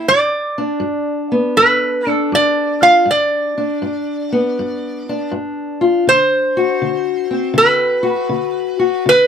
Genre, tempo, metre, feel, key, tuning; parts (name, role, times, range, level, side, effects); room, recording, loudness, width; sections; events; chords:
acoustic country blues, solo or duo; 80 BPM; 4/4; swing 66% on 8ths; G major; A4 = 440 Hz
metal-body resonator slide guitar; melody; 0.0-9.3 s; B4 to F5; -14 LUFS; right 1 dB
fingerpicked steel-string acoustic guitar; accompaniment; 0.0-9.3 s; G2 to F#4; -18 LUFS; left 3 dB
light reverb; close, detailed microphones; -14 LUFS; side -7 dB against mid
0.0-9.3 A section
0.1 G; 6.1 D7